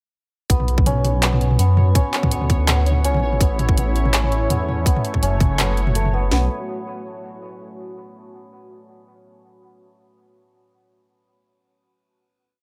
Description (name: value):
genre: half-time drum and bass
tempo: 165 BPM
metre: 4/4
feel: swing 54% on 16ths, half-time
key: B minor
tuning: A4 = 440 Hz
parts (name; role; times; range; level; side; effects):
- deep dark ambient pad; sustained chords; 1.2-6.5 s; A3 to C#5; -33 LUFS; equal; chorus, built-in reverb, sidechain pumping
- santur; arpeggios; 0.5-6.5 s; A3 to C#4; -29 LUFS; equal; dub echo
- phased detuned saw bass; bass; 0.5-6.5 s; F#1 to F#2; -21 LUFS; equal; phaser
- drum and bass drum kit; drums; 0.5-6.4 s; kick drum, snare drum; -20 LUFS; equal; overdrive
- drum and bass drum kit; drums; 0.5-6.1 s; handclaps, hi-hat, toms; -25 LUFS; equal; overdrive
- pulsing gated texture; texture; 1.1-6.3 s; C#5; -38 LUFS; equal; chorus, built-in reverb
room: light reverb, digital ambience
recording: none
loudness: -19 LUFS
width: mono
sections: 0.5-6.3 drop; 6.3-7.8 final chord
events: drop 0.5-6.3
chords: 0.5 B5; 2.0 C#m7; 3.4 A; 4.9 F#m; 6.3 Bm